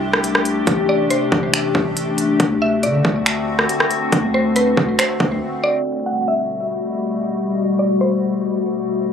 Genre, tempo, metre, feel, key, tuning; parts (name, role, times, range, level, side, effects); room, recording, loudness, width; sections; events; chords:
hip hop, atmospheric cloud-rap; 139 BPM; 4/4; half-time; G major; A4 = 440 Hz
glassy FM pad; sustained chords; 0.0-9.1 s; B2 to G4; -19 LUFS; left 3 dB; ensemble chorus, built-in reverb, sidechain pumping
long sustained 808-style bass; bass; 0.0-5.4 s; A1 to D3; -23 LUFS; equal
trap drum kit; drums; 0.1-6.1 s; finger snaps, hi-hat, kick drum, rim click; -18 LUFS; equal
mallet-like synth pluck; melody; 0.9-8.4 s; B4 to F#5; -23 LUFS; right 1 dB; chorus, tape echo
light reverb, digital ambience; recorded on a phone in the room, club ambience, low-pass filter; -16 LUFS; side -7 dB against mid
0.0-5.9 A section; 5.9-9.1 B section
break 5.4-5.9
0.0 Am7; 2.4 D7; 5.9 Gmaj9